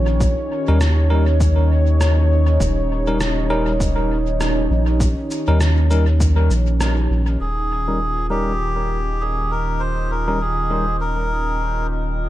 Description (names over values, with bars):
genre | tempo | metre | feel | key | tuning
ambient dub | 100 BPM | 4/4 | swing 58% on 16ths | Eb mixolydian | A4 = 441 Hz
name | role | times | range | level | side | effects
warm analog pad | sustained chords | 0.0-12.3 s | Eb3 to G5 | -24 LUFS | right 1 dB | wide subtle chorus
soft dub sub bass | bass | 0.0-12.3 s | Eb1 to Eb2 | -18 LUFS | equal | none
electronic cabasa and rim click | drums | 0.2-6.9 s | none | -28 LUFS | equal | dub echo
electronic kick drum | drums | 0.2-6.3 s | none | -22 LUFS | equal | none
bell-like tine electric piano | stabs | 0.7-10.8 s | G3 to Bb4 | -26 LUFS | left 1 dB | low-pass filter, dub echo
melodica | melody | 7.4-11.9 s | G4 to C5 | -23 LUFS | equal | dub echo
room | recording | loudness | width
light reverb, digital ambience | none | -16 LUFS | side -14 dB against mid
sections
0.0-7.4 A section; 7.4-12.3 B section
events
band accent 6.8-7.1; filter sweep on tine electric piano 7.4-12.3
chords
0.0 Eb7